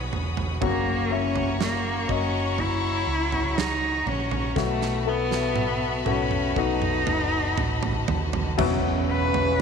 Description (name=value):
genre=pop ballad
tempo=60 BPM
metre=4/4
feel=straight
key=unclear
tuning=A4 = 443 Hz
part: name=rich cello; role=melody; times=0.0-9.6 s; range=A3 to B4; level=-27 LUFS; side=equal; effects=none
part: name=dark upright piano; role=accompaniment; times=0.0-9.6 s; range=B2 to D#5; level=-29 LUFS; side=left 10 dB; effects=none
part: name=bright studio string section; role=sustained chords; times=0.0-9.6 s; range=E4 to D#6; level=-32 LUFS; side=left 4 dB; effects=none
part: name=hollow-body short-scale fingered electric bass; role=bass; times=0.0-9.6 s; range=E1 to D#2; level=-29 LUFS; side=right 1 dB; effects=none
part: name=huge arena drum kit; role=drums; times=0.1-9.6 s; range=crash cymbal, kick drum, snare drum, toms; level=-30 LUFS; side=right 6 dB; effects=none
part: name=mellow French horn section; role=second line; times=8.6-9.6 s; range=C#3 to C#4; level=-28 LUFS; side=right 12 dB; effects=none
part: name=impact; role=sound effects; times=8.6-9.6 s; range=none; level=-34 LUFS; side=right 2 dB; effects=none
room=moderate echo chamber reverb, RT60 2.6 s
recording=1960s-style stereo with parts hard left and right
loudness=-22 LUFS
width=side -6 dB against mid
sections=0.0-8.6 A section; 8.6-9.6 B section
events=drum fill 4.6-8.6; impact 8.6-9.6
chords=0.0 Badd9; 0.6 F#; 4.6 B7sus4; 6.6 B7; 8.6 Esus2